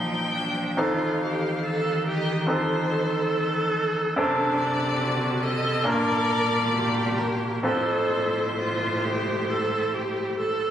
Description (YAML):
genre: classical, slow romantic movement for piano quartet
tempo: 64-73 BPM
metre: 4/4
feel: rubato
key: unclear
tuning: A4 = 440 Hz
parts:
  - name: clear violin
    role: melody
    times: 0.0-10.7 s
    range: Bb4 to G5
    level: -30 LUFS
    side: left 4 dB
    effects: none
  - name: rich cello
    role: second line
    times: 0.0-10.7 s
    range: A2 to F3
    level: -29 LUFS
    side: right 1 dB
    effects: none
  - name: bright grand piano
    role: accompaniment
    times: 0.0-10.7 s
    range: F2 to Bb4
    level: -27 LUFS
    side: equal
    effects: none
  - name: rich viola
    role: accompaniment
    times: 0.0-10.7 s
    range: D4 to Bb4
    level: -27 LUFS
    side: right 1 dB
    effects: none
room: moderate scoring stage reverb, RT60 1.6 s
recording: recorded on a phone in the room, club reverb, faint mains hum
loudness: -22 LUFS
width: side -10 dB against mid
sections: 0.0-10.7 A section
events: none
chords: 0.0 Bb; 0.8 F7; 4.2 D7/F#; 5.9 Gm; 7.7 F